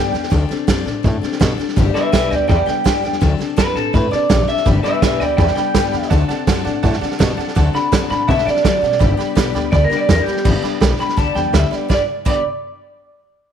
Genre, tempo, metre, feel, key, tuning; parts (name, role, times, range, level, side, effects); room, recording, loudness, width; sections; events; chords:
rockabilly; 166 BPM; 4/4; straight; G major; A4 = 440 Hz
electric guitar through a small old amp; melody; 0.0-12.4 s; G4 to B5; -19 LUFS; right 1 dB; spring reverb, tape echo
picked steel-string acoustic guitar; accompaniment; 0.0-12.4 s; G2 to A4; -23 LUFS; left 11 dB
upright bass; bass; 0.0-12.4 s; G1 to D3; -19 LUFS; left 1 dB
vintage drum kit; drums; 0.1-12.3 s; crash cymbal, hi-hat, kick drum, snare drum; -18 LUFS; right 3 dB
honky-tonk upright piano; accompaniment; 4.7-12.4 s; D5 to B5; -28 LUFS; right 9 dB
light reverb, small room reverb; 1960s-style stereo with parts hard left and right; -14 LUFS; side -8 dB against mid
0.0-10.5 A section; 10.5-11.9 B section; 11.9-13.3 C section
0.3 D7; 1.8 G; 3.2 D7; 4.7 G; 6.1 D7; 9.0 G